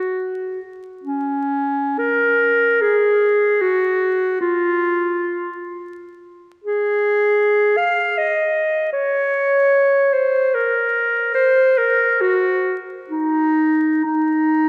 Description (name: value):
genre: classical, free, expressive piece for unaccompanied clarinet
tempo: 60-82 BPM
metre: 3/4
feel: rubato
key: unclear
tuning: A4 = 440 Hz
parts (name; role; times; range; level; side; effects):
- bright clarinet; solo; 0.0-14.7 s; Db4 to F5; -18 LUFS; equal; none
room: wet church reverb, RT60 2.8 s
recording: vinyl crackle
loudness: -18 LUFS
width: mono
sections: 0.0-14.7 A section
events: none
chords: none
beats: 0.22 1.04 | 1.99 2.82 3.61 | 4.41 5.17 5.91 | 6.65 7.41 8.17 | 8.93 9.73 10.53 | 11.34 12.21 13.10 | 14.05